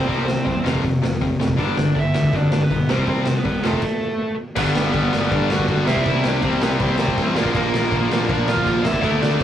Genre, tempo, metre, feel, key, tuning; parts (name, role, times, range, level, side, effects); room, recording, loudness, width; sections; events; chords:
punk rock; 161 BPM; 4/4; straight; G mixolydian; A4 = 440 Hz
dark smooth lead guitar; melody; 0.0-9.4 s; A3 to F#5; -24 LUFS; right 1 dB; overdrive
overdriven semi-hollow guitar; riff; 0.0-9.4 s; F2 to D4; -25 LUFS; right 3 dB
tight distorted guitar; riff; 0.0-9.4 s; F2 to D4; -23 LUFS; left 4 dB; distortion
fuzz picked electric bass; bass; 0.0-9.4 s; F1 to Bb2; -26 LUFS; equal; overdrive
raw garage drum kit; drums; 0.0-9.4 s; crash cymbal, hi-hat, kick drum, snare drum; -23 LUFS; equal
tight distorted guitar; riff; 4.6-9.4 s; G2 to E4; -26 LUFS; equal; distortion
light reverb; rough rehearsal-room recording, tube saturation; -17 LUFS; side -10 dB against mid
0.0-4.6 A section; 4.6-9.4 B section
stop 3.8-4.6
0.0 C; 0.6 F5; 1.6 G; 2.9 C5; 3.6 F; 3.8 N.C.; 4.6 G; 5.9 C; 7.4 Bb